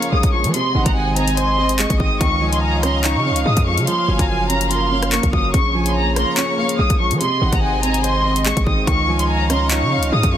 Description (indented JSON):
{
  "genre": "hip hop, drill",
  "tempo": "144 BPM",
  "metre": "4/4",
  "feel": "half-time",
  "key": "unclear",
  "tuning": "A4 = 440 Hz",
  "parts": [
    { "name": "dark chamber violin section", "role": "melody", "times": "0.0-10.4 s", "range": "Ab5 to Eb6", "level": "-21 LUFS", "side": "left 1 dB", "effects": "low-pass filter" },
    { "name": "warm studio violin section", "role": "second line", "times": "0.0-10.1 s", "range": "Eb5 to Bb5", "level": "-28 LUFS", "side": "left 2 dB", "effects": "tape echo" },
    { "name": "dark concert grand piano", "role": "accompaniment", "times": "0.0-10.4 s", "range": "C3 to C5", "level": "-22 LUFS", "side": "right 3 dB", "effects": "low-pass filter" },
    { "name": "warm studio string section", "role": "sustained chords", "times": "0.0-10.4 s", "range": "Db3 to F5", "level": "-27 LUFS", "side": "left 2 dB", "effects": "none" },
    { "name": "drill drum kit", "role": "drums", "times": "0.0-10.3 s", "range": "handclaps, hi-hat, kick drum, rim click", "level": "-20 LUFS", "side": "equal", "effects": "none" },
    { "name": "hard-hitting 808-style bass", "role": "bass", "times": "0.1-10.4 s", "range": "Gb1 to F3", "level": "-20 LUFS", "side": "equal", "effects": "none" }
  ],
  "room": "small room ambience",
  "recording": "dense, heavily limited modern master",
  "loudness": "-15 LUFS",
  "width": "side -10 dB against mid",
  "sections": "0.0-10.4 A section",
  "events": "none",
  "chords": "0.0 Bbm7; 0.5 Ab; 2.2 Dbadd9; 3.9 Gbmaj7; 5.5 Bbm7; 7.2 Ab; 8.9 Dbadd9"
}